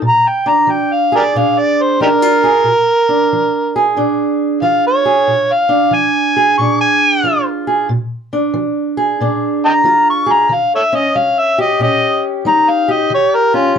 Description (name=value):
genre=acoustic country blues, solo or duo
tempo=92 BPM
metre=4/4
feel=swing 66% on 8ths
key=Bb mixolydian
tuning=A4 = 441 Hz
part: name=fingerpicked steel-string acoustic guitar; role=accompaniment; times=0.0-13.8 s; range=Bb2 to Ab4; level=-16 LUFS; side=right 2 dB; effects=none
part: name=overdriven harmonica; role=melody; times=0.1-13.8 s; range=Eb4 to Db6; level=-12 LUFS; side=equal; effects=none
room=moderate small room reverb, RT60 0.5 s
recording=none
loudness=-11 LUFS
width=side -7 dB against mid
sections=0.0-13.8 A section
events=harmonica solo 0.0-13.8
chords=0.0 Bb7; 10.5 Eb7